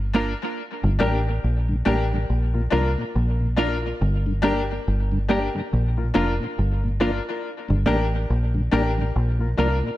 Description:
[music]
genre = reggae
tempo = 70 BPM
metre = 4/4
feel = swing 59% on 16ths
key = G minor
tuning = A4 = 440 Hz
[part]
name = deep dub fingered electric bass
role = bass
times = 0.0-9.8 s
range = F1 to C2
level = -22 LUFS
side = equal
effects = none
[part]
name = clean electric guitar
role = accompaniment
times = 0.1-9.8 s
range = Bb3 to Bb4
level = -27 LUFS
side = right 3 dB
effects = tremolo, tape echo
[part]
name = bright upright piano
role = stabs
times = 0.1-9.8 s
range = D4 to Bb4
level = -28 LUFS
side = left 4 dB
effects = high-pass filter, tape echo
[part]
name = mellow tonewheel organ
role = accompaniment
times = 0.8-9.9 s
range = G2 to D4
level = -31 LUFS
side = left 1 dB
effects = chorus vibrato, slow rotary speaker
[sound]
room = light reverb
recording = none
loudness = -20 LUFS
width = side -15 dB against mid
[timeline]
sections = 0.0-10.0 A section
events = break 0.0-0.6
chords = 0.0 Bb; 0.6 Gm; 2.3 Bb; 4.0 Gm; 5.7 Bb; 7.4 Gm; 9.2 Bb

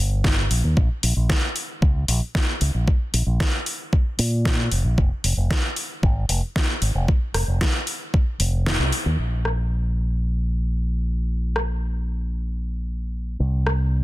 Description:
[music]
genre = nu-disco, nu disco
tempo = 114 BPM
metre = 4/4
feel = straight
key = Bb dorian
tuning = A4 = 440 Hz
[part]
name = fingered electric bass with an envelope filter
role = bass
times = 0.0-14.0 s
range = F1 to Bb2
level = -21 LUFS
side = equal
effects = tube saturation
[part]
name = electronic kick drum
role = drums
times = 0.2-8.2 s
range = none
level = -20 LUFS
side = equal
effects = overdrive
[part]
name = pop drum kit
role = drums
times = 0.2-13.8 s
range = hi-hat, rim click, snare drum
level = -25 LUFS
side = equal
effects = overdrive
[sound]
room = little or no reverb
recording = dense, heavily limited modern master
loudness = -20 LUFS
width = side -17 dB against mid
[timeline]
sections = 0.0-9.2 A section; 9.2-14.0 B section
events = kick drops out 8.7-9.2; band accent 8.7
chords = none

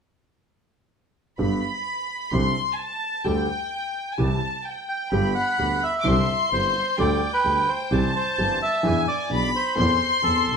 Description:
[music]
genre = tango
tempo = 129 BPM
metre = 4/4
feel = rubato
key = G major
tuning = A4 = 441 Hz
[part]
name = warm studio violin section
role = second line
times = 1.4-10.6 s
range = G5 to D6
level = -25 LUFS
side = left 2 dB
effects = none
[part]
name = warm concert grand piano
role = accompaniment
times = 1.4-10.6 s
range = G1 to A4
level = -26 LUFS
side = equal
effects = none
[part]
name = clear double bass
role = bass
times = 1.4-10.6 s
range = G1 to E2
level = -26 LUFS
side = right 1 dB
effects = none
[part]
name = bandoneon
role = melody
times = 4.9-10.6 s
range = A4 to G5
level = -25 LUFS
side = right 1 dB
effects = none
[sound]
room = wet studio reverb, RT60 0.7 s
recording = band playing live in one room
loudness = -21 LUFS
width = side -6 dB against mid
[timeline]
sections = 1.4-5.1 A section; 5.1-10.6 B section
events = none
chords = 1.4 G; 2.3 Cadd9; 3.3 Gsus2/D; 4.2 C; 5.1 G; 6.1 Cadd9; 7.0 Gsus2/D; 7.9 C; 8.8 E7; 9.8 Amadd9/E

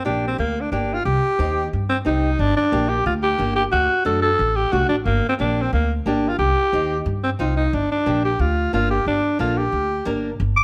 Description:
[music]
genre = latin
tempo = 180 BPM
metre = 4/4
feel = straight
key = G minor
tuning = A4 = 440 Hz
[part]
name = raspy alto saxophone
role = melody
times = 0.0-10.1 s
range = Bb3 to A4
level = -23 LUFS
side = equal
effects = none
[part]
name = flamenco guitar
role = accompaniment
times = 0.0-10.3 s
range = A3 to Bb4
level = -28 LUFS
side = equal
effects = none
[part]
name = upright bass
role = bass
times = 0.1-10.6 s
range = G1 to G2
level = -26 LUFS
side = equal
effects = none
[part]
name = growling clarinet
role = second line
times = 10.6 s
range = D6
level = -16 LUFS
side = equal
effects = none
[sound]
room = moderate large studio reverb, RT60 1.3 s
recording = none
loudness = -20 LUFS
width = mono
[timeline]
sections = 0.0-10.4 A section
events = none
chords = 0.0 Gm; 1.1 Cm; 2.4 Gm; 3.7 D; 5.1 Gm; 6.4 Cm; 7.7 Gm

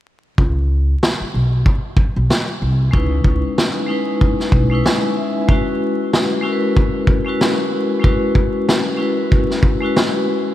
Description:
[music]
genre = hip hop, boom-bap hip-hop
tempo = 94 BPM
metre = 4/4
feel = swing 58% on 16ths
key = C# minor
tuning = A4 = 440 Hz
[part]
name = upright bass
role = bass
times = 0.4-4.8 s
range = B1 to C#2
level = -17 LUFS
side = equal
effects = none
[part]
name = vintage drum kit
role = drums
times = 0.4-10.1 s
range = kick drum, snare drum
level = -17 LUFS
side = equal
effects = none
[part]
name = vibraphone with hard mallets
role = accompaniment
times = 2.9-10.5 s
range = G#3 to G#5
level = -18 LUFS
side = left 2 dB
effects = cassette tape
[sound]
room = light reverb, small room ambience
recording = vinyl crackle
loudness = -14 LUFS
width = side -13 dB against mid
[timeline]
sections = 0.4-10.5 A section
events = hi-hats muted 0.4-10.5; vibraphone fill 4.5-5.5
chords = 0.4 C#m7; 5.5 F#7sus4

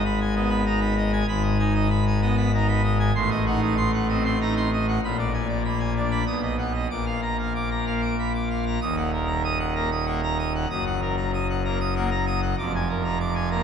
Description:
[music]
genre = classical, organ toccata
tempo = 96 BPM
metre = 3/4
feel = straight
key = Eb minor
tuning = A4 = 440 Hz
[part]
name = pipe organ, full organ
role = solo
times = 0.0-13.6 s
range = Eb1 to D#6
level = -22 LUFS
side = equal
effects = none
[sound]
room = wet church reverb, RT60 3.5 s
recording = minimal, uncompressed stereo recording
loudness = -22 LUFS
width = side -7 dB against mid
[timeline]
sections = 0.0-8.8 A section; 8.8-13.6 B section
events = none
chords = 0.0 G#m; 3.2 Adim7; 5.0 Bb7b9; 6.3 B; 6.9 Bb; 8.8 Ebm; 10.7 Ebm/Gb; 12.6 Bb7/F

